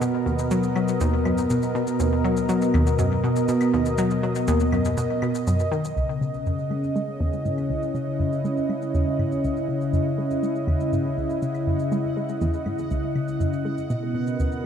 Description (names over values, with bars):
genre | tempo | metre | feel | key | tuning
ambient, sequencer-driven space music | 121 BPM | 4/4 | straight | C# dorian | A4 = 441 Hz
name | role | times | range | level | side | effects
sweeping resonant pad | sustained chords | 0.0-14.7 s | B2 to D#5 | -24 LUFS | equal | chorus
analog pluck | riff | 0.0-14.6 s | C#2 to G#3 | -25 LUFS | equal | chorus, ping-pong delay
shaker and claves | percussion | 0.0-14.6 s | none | -42 LUFS | left 5 dB | ping-pong delay
bubbling stepped-filter texture | texture | 6.0-14.7 s | F#5 | -46 LUFS | right 4 dB | chorus, built-in reverb
room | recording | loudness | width
moderate plate reverb, RT60 3.5 s | dark, warm production | -21 LUFS | side -8 dB against mid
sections
0.0-6.0 A section; 6.0-14.7 B section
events
fade-in on synth texture 6.0-14.7; fade-in on drum 6.0-14.7; filter sweep on synth arpeggio sound 6.0-14.7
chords
0.0 Bmaj7; 6.0 C#madd9; 13.9 Bmaj7